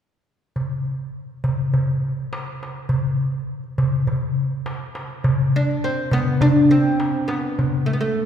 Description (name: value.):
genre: Arabic maqam ensemble.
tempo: 103 BPM.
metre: 4/4.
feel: straight.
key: unclear.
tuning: A4 = 439 Hz.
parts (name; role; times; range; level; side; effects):
darbuka; percussion; 0.6-7.7 s; none; -21 LUFS; equal; none.
oud; melody; 5.6-8.3 s; A3 to D4; -19 LUFS; equal; none.
room: wet concert hall reverb, RT60 2.1 s.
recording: recorded in a church or concert hall.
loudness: -19 LUFS.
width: side -9 dB against mid.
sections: 0.6-5.2 A section; 5.2-8.3 B section.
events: none.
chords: none.